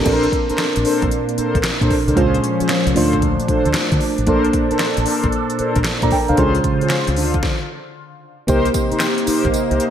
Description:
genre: R&B, new jack swing.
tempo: 114 BPM.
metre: 4/4.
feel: swing 66% on 16ths.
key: unclear.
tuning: A4 = 445 Hz.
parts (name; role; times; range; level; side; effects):
mellow FM electric piano; accompaniment; 0.0-9.9 s; Ab3 to Bb5; -20 LUFS; right 1 dB; chorus.
deep dub fingered electric bass; bass; 0.0-9.8 s; A1 to D3; -21 LUFS; equal; none.
phased analog pad; sustained chords; 0.1-9.9 s; Bb2 to C5; -23 LUFS; equal; phaser, chorus.
mellow synth brass; stabs; 0.1-9.8 s; Db4 to C5; -22 LUFS; left 1 dB; chorus, digital delay.
deep house drum kit; drums; 0.1-9.9 s; crash cymbal, handclaps, hi-hat, kick drum, snare drum, tambourine; -21 LUFS; equal; gated reverb.
room: moderate plate reverb, RT60 1.7 s.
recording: bright 1980s-style digital production.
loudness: -15 LUFS.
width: side -9 dB against mid.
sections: 0.1-8.5 A section; 8.5-9.9 B section.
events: stop 7.4-8.5.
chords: 0.1 Bbmaj9; 2.2 Dbmaj7; 3.0 Dm7; 4.3 Bbmaj9; 6.4 Dbmaj7; 7.2 Dm7; 8.5 Cm7.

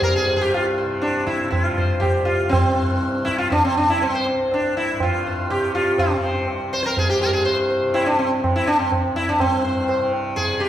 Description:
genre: indian classical, Hindustani.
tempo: 122 BPM.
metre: 7/4.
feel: straight.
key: C major.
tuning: A4 = 440 Hz.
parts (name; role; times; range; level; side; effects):
sitar; melody; 0.0-10.7 s; C4 to C5; -20 LUFS; equal; none.
tanpura; drone; 0.0-10.7 s; C2 to C3; -29 LUFS; left 1 dB; none.
tabla; percussion; 0.0-10.6 s; none; -24 LUFS; right 1 dB; none.
room: wet recital hall reverb, RT60 1.7 s.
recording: heard from further back in the room.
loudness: -18 LUFS.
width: side -11 dB against mid.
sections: 0.0-9.4 A section; 9.4-10.7 B section.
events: speeding up 0.0-10.7.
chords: none.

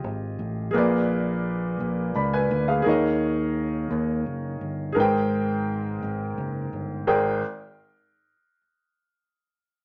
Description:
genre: slow gospel.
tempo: 57 BPM (dotted quarters).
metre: 6/8.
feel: straight.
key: Ab major.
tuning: A4 = 441 Hz.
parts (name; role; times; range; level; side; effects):
clear baby grand piano; accompaniment; 0.0-7.4 s; Ab1 to Cb6; -27 LUFS; equal; none.
fingered electric bass; bass; 0.0-7.4 s; Gb1 to Eb2; -31 LUFS; equal; none.
room: moderate studio reverb, RT60 0.9 s.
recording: nothing above 7.5 kHz.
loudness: -25 LUFS.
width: mono.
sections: 0.0-7.1 A section; 7.1-9.2 B section.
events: none.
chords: 0.0 Fm9; 0.7 Bb7b9; 2.8 Eb7sus4; 5.0 Abmaj9.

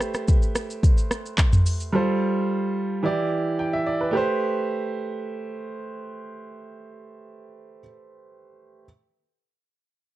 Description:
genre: amapiano.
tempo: 109 BPM.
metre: 4/4.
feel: straight.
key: A minor.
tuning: A4 = 440 Hz.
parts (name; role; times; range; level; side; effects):
clear baby grand piano; accompaniment; 0.0-8.9 s; E3 to G5; -25 LUFS; right 2 dB; none.
afro-pop drum kit; drums; 0.0-1.9 s; handclaps, hi-hat, kick drum, rim click, shaker, toms; -19 LUFS; equal; vintage 12-bit sampler grit.
room: little or no reverb.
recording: dark, warm production.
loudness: -21 LUFS.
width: side -15 dB against mid.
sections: 0.0-4.1 A section; 4.1-6.3 B section.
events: drop 0.0-4.1.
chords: 0.0 Am9; 1.9 G9sus4; 3.0 Em7; 4.1 Am9.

